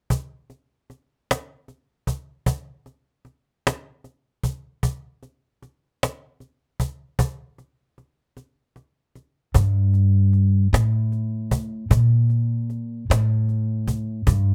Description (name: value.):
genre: slow blues.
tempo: 51 BPM (dotted quarters).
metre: 12/8.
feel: straight.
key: G minor.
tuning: A4 = 440 Hz.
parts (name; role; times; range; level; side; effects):
cajon; drums; 0.1-14.4 s; none; -25 LUFS; equal; none.
upright bass; bass; 9.5-14.5 s; G2 to Bb2; -21 LUFS; equal; none.
room: little or no reverb.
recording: none.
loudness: -23 LUFS.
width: mono.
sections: 0.1-9.6 A section; 9.6-14.5 B section.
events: break 8.4-9.6.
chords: none.